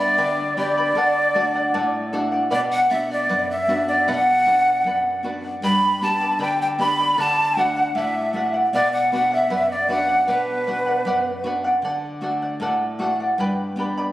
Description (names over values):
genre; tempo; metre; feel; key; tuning
andean folk, Andean ensemble; 77 BPM; 2/4; straight; B minor; A4 = 440 Hz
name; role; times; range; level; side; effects
breathy large quena; melody; 0.0-11.5 s; B4 to B5; -20 LUFS; equal; none
mellow hollow polished pan flute; second line; 0.0-11.4 s; B4 to B5; -26 LUFS; right 1 dB; none
charango; accompaniment; 0.0-14.1 s; G4 to B5; -24 LUFS; equal; none
nylon-string guitar; accompaniment; 0.0-14.1 s; F#2 to G4; -28 LUFS; equal; none
room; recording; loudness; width
wet scoring stage reverb, RT60 2.0 s; recorded on a phone in the room, club reverb, compression; -18 LUFS; side -15 dB against mid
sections
0.0-11.8 A section; 11.8-14.1 B section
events
nylon-string guitar fill 13.8-14.1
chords
0.0 G; 1.0 D; 2.5 Bm; 5.6 G; 7.2 D; 8.7 Bm; 11.8 D; 13.4 G